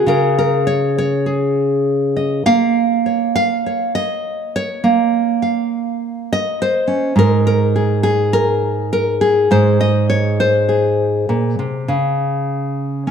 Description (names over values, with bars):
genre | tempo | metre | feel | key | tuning
folk, solo fingerstyle acoustic guitar | 102 BPM | 4/4 | straight | Db major | A4 = 440 Hz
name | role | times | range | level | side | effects
nylon-string guitar | solo | 0.0-13.1 s | Ab2 to F5 | -14 LUFS | equal | none
room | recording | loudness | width
light reverb | dark, warm production | -14 LUFS | side -7 dB against mid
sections
0.0-11.9 A section; 11.9-13.1 B section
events
none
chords
0.0 Db5; 2.5 Bbm; 7.2 Ab; 11.9 Db5